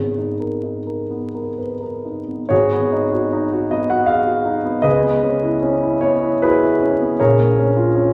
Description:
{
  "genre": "classical, impressionist solo piano",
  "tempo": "63-81 BPM",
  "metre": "3/4",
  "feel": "rubato",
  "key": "G# minor",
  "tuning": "A4 = 440 Hz",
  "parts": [
    { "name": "warm concert grand piano", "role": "solo", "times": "0.0-8.1 s", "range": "G#1 to F#5", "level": "-18 LUFS", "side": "equal", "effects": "none" }
  ],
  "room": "wet recital hall reverb, RT60 1.6 s",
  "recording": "vinyl crackle",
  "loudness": "-18 LUFS",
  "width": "mono",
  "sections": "0.0-2.5 A section; 2.5-8.1 A section",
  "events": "none",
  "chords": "0.0 G#madd9; 2.5 G#m7; 4.8 C#m9; 7.2 A#m7"
}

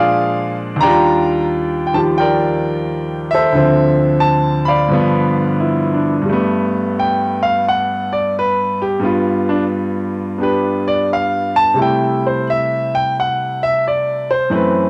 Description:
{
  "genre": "solo jazz",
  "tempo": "88 BPM",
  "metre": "4/4",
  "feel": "swing 66% on 8ths",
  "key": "G major from 6.3 s",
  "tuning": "A4 = 440 Hz",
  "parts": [
    { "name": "clear grand piano", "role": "solo", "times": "0.0-14.9 s", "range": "D2 to B5", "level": "-16 LUFS", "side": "equal", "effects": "cassette tape" }
  ],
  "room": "light reverb, small room reverb",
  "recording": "home recording on cassette",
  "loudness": "-16 LUFS",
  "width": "mono",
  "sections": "0.0-6.3 A section; 6.3-14.9 B section",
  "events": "grand piano solo 6.3-14.9",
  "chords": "0.0 Bb7; 0.8 Ebmaj9; 3.5 Dm7; 4.9 G7; 6.3 Gadd9; 9.0 G7; 11.8 C6"
}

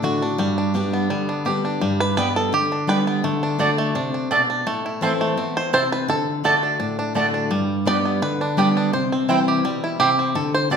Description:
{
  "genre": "bluegrass",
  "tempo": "168 BPM",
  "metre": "4/4",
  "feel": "straight",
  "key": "G major",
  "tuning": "A4 = 441 Hz",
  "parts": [
    { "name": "bluegrass banjo", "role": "melody", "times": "0.0-10.8 s", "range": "G3 to D5", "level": "-23 LUFS", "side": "right 2 dB", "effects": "none" },
    { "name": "picked steel-string acoustic guitar", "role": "accompaniment", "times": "0.0-10.8 s", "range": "G2 to G4", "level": "-22 LUFS", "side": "left 2 dB", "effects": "none" },
    { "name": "mandolin", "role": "stabs", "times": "2.2-10.8 s", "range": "A3 to A5", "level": "-23 LUFS", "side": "right 4 dB", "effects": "none" }
  ],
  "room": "wet recital hall reverb, RT60 1.4 s",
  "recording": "recorded in a church or concert hall",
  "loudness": "-18 LUFS",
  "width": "side -6 dB against mid",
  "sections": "0.0-10.8 A section",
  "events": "five-string banjo solo 0.0-10.8",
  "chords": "0.4 G; 3.2 D; 4.7 Am; 6.1 D; 7.5 G; 8.9 C"
}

